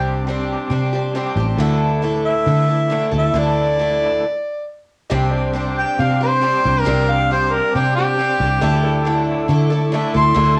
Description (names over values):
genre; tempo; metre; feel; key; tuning
rock; 137 BPM; 4/4; straight; C major; A4 = 440 Hz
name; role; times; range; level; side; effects
mellow harmonica; melody; 0.0-10.6 s; G4 to C6; -20 LUFS; equal; none
picked twelve-string acoustic guitar; accompaniment; 0.0-10.6 s; C3 to A4; -24 LUFS; equal; cassette tape
electric guitar through a small old amp; riff; 0.0-10.6 s; C3 to A4; -30 LUFS; equal; tremolo, cassette tape
fingered electric bass; bass; 0.0-10.6 s; A1 to D3; -22 LUFS; equal; none
dark upright piano; accompaniment; 5.1-10.6 s; E4 to D5; -33 LUFS; equal; none
tonewheel organ; sustained chords; 5.1-10.6 s; A4 to E6; -35 LUFS; equal; none
room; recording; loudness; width
light reverb; home recording on cassette, studio reverb; -18 LUFS; mono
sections
0.0-5.1 A section; 5.1-10.6 B section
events
stop 4.2-5.1; harmonica solo 5.1-10.6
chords
0.0 Csus2; 1.6 Dsus2; 5.1 Csus2; 8.6 Dsus2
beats
0.27 0.71 1.15 | 1.59 2.03 2.47 2.91 | 3.35 3.79 4.23 4.67 | 5.11 5.55 5.99 6.43 | 6.87 7.31 7.74 8.18 | 8.62 9.06 9.49 9.93 | 10.37